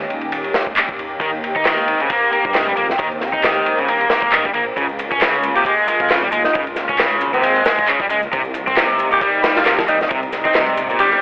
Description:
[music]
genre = breakbeat, breaks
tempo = 135 BPM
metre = 4/4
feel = swing 56% on 16ths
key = Eb mixolydian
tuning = A4 = 443 Hz
[part]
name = phased analog pad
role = sustained chords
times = 0.0-11.2 s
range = C3 to G4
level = -25 LUFS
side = equal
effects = phaser, chorus, sidechain pumping
[part]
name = dark detuned saw bass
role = bass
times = 0.0-11.2 s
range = Eb1 to G2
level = -29 LUFS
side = equal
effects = none
[part]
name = crunchy breakbeat drum kit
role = drums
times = 0.1-11.2 s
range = kick drum, ride cymbal, snare drum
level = -21 LUFS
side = equal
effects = none
[part]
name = garage drum kit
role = drums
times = 0.8-11.2 s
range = handclaps, hi-hat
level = -20 LUFS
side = equal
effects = overdrive
[part]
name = cranked stack guitar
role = riff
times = 1.2-11.2 s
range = Bb2 to Eb4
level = -17 LUFS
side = equal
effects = overdrive, tape echo
[part]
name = raspy alto saxophone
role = melody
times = 5.6-11.2 s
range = C4 to G4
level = -19 LUFS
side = equal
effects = small speaker sound, tape echo
[sound]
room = moderate studio reverb, RT60 0.6 s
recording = telephone sound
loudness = -14 LUFS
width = side -25 dB against mid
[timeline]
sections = 0.0-11.2 A section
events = kick drops out 11.0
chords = 0.0 Eb7; 4.8 Db6; 8.3 Cm7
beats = 0.33 0.77 | 1.22 1.66 2.10 2.55 | 2.99 3.44 3.88 4.33 | 4.77 5.21 5.66 6.10 | 6.55 6.99 7.44 7.88 | 8.33 8.77 9.21 9.66 | 10.10 10.55 10.99

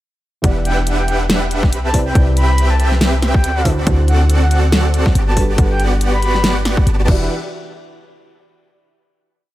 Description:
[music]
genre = future bass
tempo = 140 BPM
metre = 4/4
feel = swing 56% on 16ths, half-time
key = E minor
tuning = A4 = 441 Hz
[part]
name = felt-muted upright piano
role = accompaniment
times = 0.4-7.3 s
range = C3 to F#5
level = -24 LUFS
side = right 1 dB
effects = sidechain pumping, tape echo
[part]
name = supersaw chords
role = riff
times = 0.4-7.2 s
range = B3 to B5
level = -21 LUFS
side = right 1 dB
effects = cassette tape, sidechain pumping
[part]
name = warm 808-style bass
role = bass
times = 0.4-7.3 s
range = E1 to D2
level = -16 LUFS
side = equal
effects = sidechain pumping
[part]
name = electronic kick drum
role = drums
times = 0.4-7.2 s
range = none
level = -14 LUFS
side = equal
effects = overdrive
[part]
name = pop drum kit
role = drums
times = 0.4-7.2 s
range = crash cymbal, hi-hat, snare drum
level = -20 LUFS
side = equal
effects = none
[part]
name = breathy flute-like synth lead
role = melody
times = 0.7-6.6 s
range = F#5 to B5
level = -24 LUFS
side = equal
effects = chorus, sidechain pumping, tape echo
[sound]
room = little or no reverb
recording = none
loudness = -12 LUFS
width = side -15 dB against mid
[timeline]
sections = 0.4-7.3 drop; 7.3-9.0 final hit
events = drop 0.4-7.3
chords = 0.4 Em9; 1.9 Cmaj7; 3.7 D7; 5.4 Gmaj7; 7.1 Em9; 7.3 N.C.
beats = | 0.44 0.87 1.30 1.72 | 2.15 2.58 3.01 3.44 | 3.87 4.30 4.72 5.15 | 5.58 6.01 6.44 6.87 | 7.30

